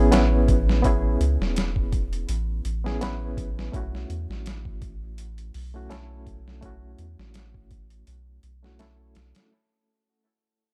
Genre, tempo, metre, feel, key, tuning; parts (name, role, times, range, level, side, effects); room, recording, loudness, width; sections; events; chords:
trip hop; 83 BPM; 4/4; swing 55% on 16ths; A4 = 440 Hz
barky reed electric piano; accompaniment; 0.0-9.5 s; A3 to B4; -29 LUFS; equal; overdrive, fast tremolo, tape echo
soft dub sub bass; bass; 0.0-9.3 s; E1 to E2; -28 LUFS; equal
boom bap sampler-style drum kit; drums; 0.1-9.5 s; hi-hat, kick drum, snare drum; -30 LUFS; equal; overdrive, small room ambience
little or no reverb; dark, warm production; -25 LUFS; mono
0.0-9.5 A section
fade-out 0.0-9.5
0.0 Amaj7; 3.7 B7sus4